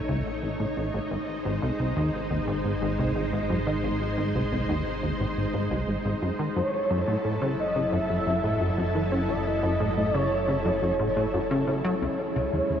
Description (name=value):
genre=ambient, sequencer-driven space music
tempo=88 BPM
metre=4/4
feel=straight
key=unclear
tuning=A4 = 437 Hz
part: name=string machine, full ensemble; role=sustained chords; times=0.0-12.8 s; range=F#3 to C#5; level=-29 LUFS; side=equal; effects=ensemble chorus, shimmer reverb
part: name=analog drone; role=bass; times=0.0-12.0 s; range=F#1 to A1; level=-35 LUFS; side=equal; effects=chorus
part: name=plucky analog bass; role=riff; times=0.1-12.8 s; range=G#1 to C#4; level=-28 LUFS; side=equal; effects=lush chorus, shimmer reverb, ping-pong delay
part: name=expressive synth lead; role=melody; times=6.6-12.8 s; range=C#5 to E5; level=-28 LUFS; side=equal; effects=ensemble chorus, shimmer reverb, ping-pong delay
room=wet huge ambient reverb, RT60 7.1 s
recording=worn, warbling old tape, cassette tape, warbly pitch drift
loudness=-24 LUFS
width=side -8 dB against mid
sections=0.0-12.0 A section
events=none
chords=0.0 A; 1.1 G#; 6.6 F#m7; 12.0 C#m